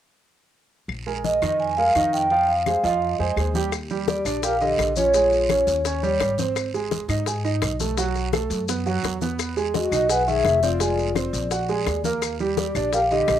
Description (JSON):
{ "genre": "Afro-Cuban jazz", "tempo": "170 BPM", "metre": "4/4", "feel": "straight", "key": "Eb major", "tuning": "A4 = 440 Hz", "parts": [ { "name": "upright bass", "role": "bass", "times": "0.9-13.4 s", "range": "F1 to Ab2", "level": "-29 LUFS", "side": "left 1 dB", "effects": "none" }, { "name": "claves", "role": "percussion", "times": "0.9-13.4 s", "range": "none", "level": "-35 LUFS", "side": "left 11 dB", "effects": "none" }, { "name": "congas", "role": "percussion", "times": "0.9-13.4 s", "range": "none", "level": "-33 LUFS", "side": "left 9 dB", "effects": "none" }, { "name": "guiro", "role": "percussion", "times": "0.9-13.4 s", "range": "none", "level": "-37 LUFS", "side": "right 8 dB", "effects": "none" }, { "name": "warm baby grand piano", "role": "accompaniment", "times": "1.1-13.4 s", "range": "D3 to Ab5", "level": "-26 LUFS", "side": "right 5 dB", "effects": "cassette tape, plate reverb" }, { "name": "vibraphone with medium mallets", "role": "melody", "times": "1.2-6.3, 9.7-13.4 s", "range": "Db5 to Ab5", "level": "-21 LUFS", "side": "equal", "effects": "cassette tape" }, { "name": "bongos", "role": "percussion", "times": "3.7-13.4 s", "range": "none", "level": "-28 LUFS", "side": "left 12 dB", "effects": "none" }, { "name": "maracas", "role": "percussion", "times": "3.7-13.4 s", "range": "none", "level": "-34 LUFS", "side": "left 9 dB", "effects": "none" }, { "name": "breathy mellow concert flute", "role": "second line", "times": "4.1-5.8, 9.8-13.4 s", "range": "F4 to B4", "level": "-28 LUFS", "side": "left 8 dB", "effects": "cassette tape" } ], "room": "wet small room ambience, RT60 0.5 s", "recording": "home recording on cassette", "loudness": "-20 LUFS", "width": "side -10 dB against mid", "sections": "0.9-3.7 A section; 3.7-13.4 B section", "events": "none", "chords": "0.9 Bb7sus4; 2.3 Fm7; 3.7 Ebmaj7; 5.1 Bbm7; 5.9 Abadd11; 6.6 Ab; 8.0 B5; 9.4 Emaj9; 10.8 Fm; 11.5 Bbaug7; 12.2 Ebmaj7" }